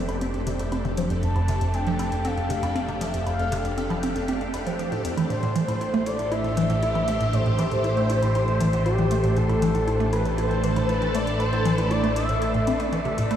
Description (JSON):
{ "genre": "ambient, sequencer-driven space music", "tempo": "118 BPM", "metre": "4/4", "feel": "straight", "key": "A minor", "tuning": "A4 = 439 Hz", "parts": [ { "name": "expressive synth lead", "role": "melody", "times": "0.0-13.1 s", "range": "G4 to A5", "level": "-28 LUFS", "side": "left 1 dB", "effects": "chorus, tape echo" }, { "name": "phased string machine", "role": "sustained chords", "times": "0.0-13.4 s", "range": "A3 to D5", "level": "-30 LUFS", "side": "equal", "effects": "ensemble chorus, phaser" }, { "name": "hollow square pluck", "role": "riff", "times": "0.0-13.4 s", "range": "F2 to E4", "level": "-26 LUFS", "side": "right 1 dB", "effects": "chorus, phaser, tape echo" }, { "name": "fat analog bass", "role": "bass", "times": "0.0-13.4 s", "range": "F1 to A1", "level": "-28 LUFS", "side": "equal", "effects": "none" }, { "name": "pulsing gated texture", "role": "texture", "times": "0.0-13.4 s", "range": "A4", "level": "-38 LUFS", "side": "equal", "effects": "chorus, built-in reverb" }, { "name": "electronic hi-hat and woodblock", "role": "percussion", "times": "0.1-13.4 s", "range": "none", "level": "-41 LUFS", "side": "left 1 dB", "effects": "tape echo" } ], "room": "wet shimmer reverb, RT60 7.4 s", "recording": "played on a big sound system in a bare room, stone room reverb", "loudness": "-21 LUFS", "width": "side -10 dB against mid", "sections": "0.0-13.4 A section", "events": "none", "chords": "0.0 F; 5.3 Am" }